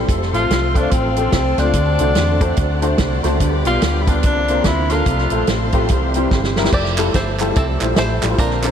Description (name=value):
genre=uptempo gospel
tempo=145 BPM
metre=4/4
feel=swing 60% on 8ths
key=F major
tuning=A4 = 440 Hz
part: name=warm grand piano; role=accompaniment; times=0.0-8.7 s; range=Bb2 to D5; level=-22 LUFS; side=left 2 dB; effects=ensemble chorus
part: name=tonewheel organ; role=sustained chords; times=0.0-8.7 s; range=D3 to C5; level=-25 LUFS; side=right 2 dB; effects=fast rotary speaker, chorus vibrato
part: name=warm symphonic string section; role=sustained chords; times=0.0-6.7 s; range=C5 to D6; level=-31 LUFS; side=left 3 dB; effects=none
part: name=hollow-body short-scale fingered electric bass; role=bass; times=0.0-8.7 s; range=F1 to E2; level=-20 LUFS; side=equal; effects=none
part: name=warm soul drum kit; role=drums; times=0.1-8.7 s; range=crash cymbal, hi-hat, kick drum, snare drum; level=-20 LUFS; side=right 1 dB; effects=none
part: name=warm tenor saxophone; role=melody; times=0.3-5.5 s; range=C4 to F4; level=-21 LUFS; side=left 2 dB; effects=diffuse ambient delay
part: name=bluegrass banjo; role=melody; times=6.7-8.7 s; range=C4 to D5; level=-22 LUFS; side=equal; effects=diffuse ambient delay
part: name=group handclap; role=percussion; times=7.0-8.7 s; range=none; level=-28 LUFS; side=right 5 dB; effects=none
room=moderate huge ambient reverb, RT60 6.7 s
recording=dreamy mix soaked in reverb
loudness=-14 LUFS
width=side -8 dB against mid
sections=0.0-6.7 A section; 6.7-8.7 B section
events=drum fill 6.3-6.7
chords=0.1 F; 1.7 D7; 3.4 G; 4.2 C9sus4; 5.1 F; 5.9 C; 6.7 Fmaj9